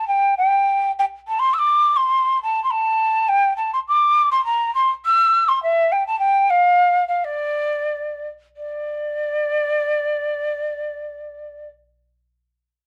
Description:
andean folk; 102 BPM; 2/4; straight; D minor; A4 = 444 Hz
mellow hollow quena; solo; 0.0-11.7 s; D5 to E6; -19 LUFS; equal
light reverb; dark, warm production, faint mains hum; -19 LUFS; mono
0.0-8.6 A section; 8.6-10.9 B section

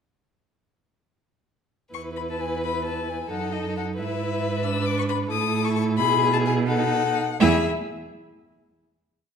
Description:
quick classical-period movement for string quartet; 80-92 BPM (dotted quarters); 6/8; rubato; E major; A4 = 439 Hz
rich violin; melody; 1.9-7.7 s; D#5 to E6; -27 LUFS; left 11 dB
rich violin; second line; 1.9-7.7 s; G#4 to B4; -29 LUFS; left 2 dB
rich viola; accompaniment; 1.9-7.7 s; D4 to E4; -30 LUFS; right 3 dB
rich cello; bass; 1.9-7.7 s; E2 to B2; -26 LUFS; right 5 dB
wet recital hall reverb, RT60 1.5 s; -21 LUFS; side -7 dB against mid
1.9-7.4 A section; 7.4-8.8 final chord
1.9 E5; 3.3 D#dim/F#; 4.0 E/G#; 4.6 G#dim; 5.3 A5; 6.0 E/B; 6.7 B7; 7.4 N.C.

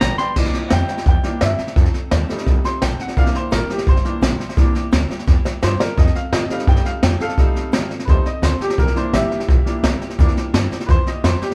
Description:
rockabilly; 171 BPM; 4/4; straight; C mixolydian; A4 = 440 Hz
bright upright piano; accompaniment; 0.0-11.5 s; E3 to C6; -26 LUFS; equal
picked steel-string acoustic guitar; accompaniment; 0.0-11.5 s; G2 to A4; -34 LUFS; equal
upright bass; bass; 0.0-11.4 s; G1 to A2; -23 LUFS; equal
jazz brush drum kit; drums; 0.0-11.5 s; crash cymbal, hi-hat, kick drum, snare drum; -20 LUFS; equal
moderate studio reverb, RT60 0.7 s; band playing live in one room; -18 LUFS; mono
0.4-11.5 A section
drum fill 0.2, 5.3-6.0; upright piano solo 0.4-11.5
0.4 C7; 1.8 F7; 3.2 C7; 6.0 F7; 8.8 C7

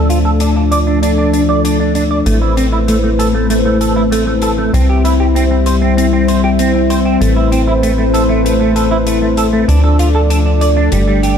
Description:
synthwave; 97 BPM; 4/4; straight; A4 = 440 Hz
chorused pulse-width pad; sustained chords; 0.0-11.4 s; F3 to E5; -14 LUFS; left 2 dB
clean electric guitar; riff; 0.0-11.3 s; G3 to D5; -18 LUFS; right 3 dB; ensemble chorus, low-pass filter, tape echo
tight sequencer bass; bass; 0.0-11.4 s; G1 to D2; -14 LUFS; equal; tube saturation
hi-hat; drums; 0.1-11.4 s; -26 LUFS; left 3 dB
moderate lush hall reverb, RT60 2.5 s; dark, warm production; -10 LUFS; side -8 dB against mid
0.0-11.4 A section
filter sweep on analog synth pad 0.0-11.4
0.0 Dm; 2.3 Amadd9; 4.7 C; 7.2 Amadd9; 9.7 Dm

